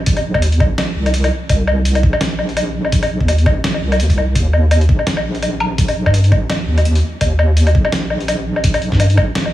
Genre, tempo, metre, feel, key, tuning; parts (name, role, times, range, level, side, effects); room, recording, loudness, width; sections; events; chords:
half-time drum and bass; 168 BPM; 4/4; swing 57% on 16ths, half-time; A4 = 440 Hz
deep soft wobble bass; bass; 0.0-9.5 s; Bb1 to G2; -15 LUFS; equal; chorus, tube saturation
boom bap sampler-style drum kit; drums; 0.1-9.5 s; hi-hat, snare drum, woodblock; -18 LUFS; left 1 dB
electronic kick drum; drums; 0.1-9.3 s; -15 LUFS; equal
little or no reverb; small room reverb; -13 LUFS; side -14 dB against mid
0.0-9.5 A section